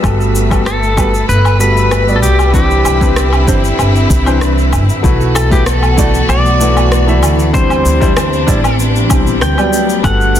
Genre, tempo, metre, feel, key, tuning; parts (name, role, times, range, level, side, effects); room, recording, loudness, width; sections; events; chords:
sunset chillout; 96 BPM; 4/4; straight; G major; A4 = 440 Hz
warm concert grand piano; accompaniment; 0.0-10.4 s; E3 to E5; -17 LUFS; left 1 dB; auto-pan, tape echo
bright studio string section; sustained chords; 0.0-10.4 s; C3 to B4; -19 LUFS; left 1 dB; vintage 12-bit sampler grit
upright bass; bass; 0.0-10.4 s; G1 to D2; -13 LUFS; equal
electronic kick drum; drums; 0.0-10.2 s; -14 LUFS; equal
electronic woodblock, shaker and rim click; drums; 0.0-10.4 s; -19 LUFS; equal; soft clipping on snare
wind-like tuned noise texture; texture; 0.0-10.4 s; B3 to E6; -25 LUFS; right 1 dB; built-in reverb
pedal steel guitar; melody; 0.7-10.4 s; G4 to G5; -17 LUFS; left 1 dB; ping-pong delay
light reverb, digital ambience; dense, heavily limited modern master; -9 LUFS; side -10 dB against mid
0.0-5.0 A section; 5.0-10.4 B section
0.0 Gmaj9; 2.5 Cmaj9; 5.0 B7sus4; 7.5 D9sus4; 9.7 Gmaj9